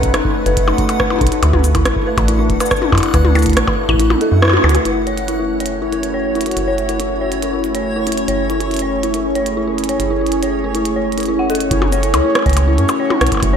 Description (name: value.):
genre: IDM.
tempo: 140 BPM.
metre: 4/4.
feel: straight.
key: F# minor.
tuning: A4 = 440 Hz.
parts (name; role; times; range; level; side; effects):
warm analog pad; sustained chords; 0.0-13.6 s; A3 to C#5; -20 LUFS; equal; chorus.
metallic FM bass; bass; 0.0-13.6 s; D1 to F#2; -18 LUFS; equal; tube saturation.
electronic kick drum; drums; 0.0-4.0, 11.7-13.5 s; none; -21 LUFS; equal; studio reverb.
glitchy drum kit; drums; 0.0-13.6 s; cabasa, hi-hat, percussion blips, rim click, toms; -19 LUFS; left 1 dB; studio reverb, slapback echo.
backwards swelling texture; texture; 0.0-11.7 s; C#5 to F#5; -28 LUFS; right 1 dB; built-in reverb.
dark detuned synth bell; arpeggios; 0.1-13.6 s; D#4 to F#5; -20 LUFS; left 1 dB; chorus, low-pass filter, tape echo.
room: moderate lush hall reverb, RT60 1.6 s.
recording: big arena sound.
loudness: -13 LUFS.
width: side -7 dB against mid.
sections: 0.0-4.9 A section; 4.9-11.7 B section; 11.7-13.6 C section.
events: kick drops out 4.0-4.9; band accent 4.5; filter sweep on synth bell 4.9-11.7.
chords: 0.0 B9; 1.4 D69; 4.9 F#m7.